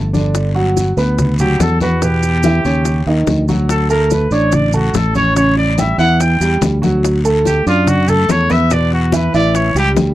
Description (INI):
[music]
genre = Afro-Cuban jazz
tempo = 144 BPM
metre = 4/4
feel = straight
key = D major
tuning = A4 = 441 Hz
[part]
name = warm grand piano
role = accompaniment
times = 0.0-10.1 s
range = B2 to D6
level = -17 LUFS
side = right 2 dB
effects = none
[part]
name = fingered electric bass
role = bass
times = 0.0-10.1 s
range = G1 to F#2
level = -15 LUFS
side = equal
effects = none
[part]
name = bongos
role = percussion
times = 0.1-10.1 s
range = none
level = -22 LUFS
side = left 9 dB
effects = none
[part]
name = congas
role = percussion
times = 0.1-10.1 s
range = none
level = -21 LUFS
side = left 2 dB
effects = none
[part]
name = maracas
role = percussion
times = 0.1-10.1 s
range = none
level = -28 LUFS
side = right 8 dB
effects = none
[part]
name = guiro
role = percussion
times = 0.2-10.1 s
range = none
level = -32 LUFS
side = left 8 dB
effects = none
[part]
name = clear trumpet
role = melody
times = 1.4-9.9 s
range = F4 to G5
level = -18 LUFS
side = equal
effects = none
[sound]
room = light reverb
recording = dry, close 1970s-style studio recording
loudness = -11 LUFS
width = side -14 dB against mid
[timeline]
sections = 0.0-10.1 A section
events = trumpet solo 0.0-10.1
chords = 0.3 Gmaj7; 2.0 Em; 2.9 Eb7; 3.7 Dmaj7; 5.4 A6; 7.0 Dadd9; 8.7 E5; 9.5 A7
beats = | 0.35 0.77 1.19 1.60 | 2.02 2.44 2.86 3.28 | 3.69 4.11 4.53 4.95 | 5.37 5.79 6.20 6.62 | 7.04 7.46 7.87 8.29 | 8.71 9.13 9.55 9.97